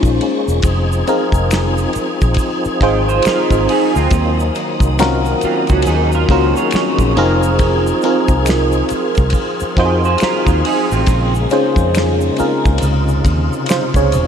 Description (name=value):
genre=R&B, neo-soul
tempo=69 BPM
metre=4/4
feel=swing 61% on 16ths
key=unclear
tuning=A4 = 440 Hz
part: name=FM electric piano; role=accompaniment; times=0.0-14.3 s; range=Bb3 to Db5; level=-17 LUFS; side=equal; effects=chorus, phaser
part: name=tonewheel organ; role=sustained chords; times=0.0-14.3 s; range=C3 to Ab4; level=-20 LUFS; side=left 1 dB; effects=slow rotary speaker, overdrive, chorus vibrato
part: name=vintage muted fingered electric bass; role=bass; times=0.0-14.3 s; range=Fb1 to F2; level=-17 LUFS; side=equal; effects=none
part: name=warm soul drum kit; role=drums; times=0.0-14.3 s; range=finger snaps, hi-hat, kick drum, ride cymbal, snare drum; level=-20 LUFS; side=equal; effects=none
part: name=egg shaker and finger snaps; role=percussion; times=0.0-14.3 s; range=none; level=-32 LUFS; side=left 2 dB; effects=none
part: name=electric guitar through a small old amp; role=second line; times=2.8-11.3 s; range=C4 to Eb5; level=-22 LUFS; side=right 5 dB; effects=analog chorus, ping-pong delay
room=moderate huge ambient reverb, RT60 7.7 s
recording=dreamy mix soaked in reverb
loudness=-12 LUFS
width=side -8 dB against mid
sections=0.0-14.3 A section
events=none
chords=0.0 Bbm9; 0.6 Fm7; 4.1 Ebm7; 7.2 Fm7; 11.1 Bbm9; 12.8 Dbmaj9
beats=| 0.64 1.51 2.38 3.25 | 4.12 4.99 5.86 6.73 | 7.59 8.46 9.33 10.20 | 11.07 11.94 12.81 13.68